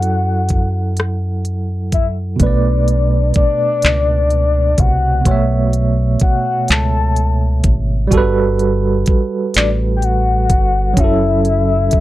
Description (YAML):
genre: slow six-eight R&B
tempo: 42 BPM (dotted quarters)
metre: 6/8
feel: straight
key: B minor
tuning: A4 = 441 Hz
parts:
  - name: soft octave-layered synth lead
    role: melody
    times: 0.0-12.0 s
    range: D5 to A5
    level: -18 LUFS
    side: left 4 dB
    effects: chorus, tremolo, slapback echo
  - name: tine electric piano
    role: accompaniment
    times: 0.0-12.0 s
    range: B2 to F#5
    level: -19 LUFS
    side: right 4 dB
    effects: medium tremolo
  - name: deep dub fingered electric bass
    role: bass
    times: 0.0-12.0 s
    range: F#1 to F#2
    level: -16 LUFS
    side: equal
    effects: none
  - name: smooth R&B drum kit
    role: drums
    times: 0.0-12.0 s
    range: handclaps, hi-hat, kick drum, rim click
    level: -15 LUFS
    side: equal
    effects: none
room: little or no reverb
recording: dry, close 1970s-style studio recording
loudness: -13 LUFS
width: side -15 dB against mid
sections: 0.0-2.4 A section; 2.4-12.0 B section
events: none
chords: 0.0 F#m7; 2.4 Bm9; 8.1 Gmaj9; 11.0 F#m7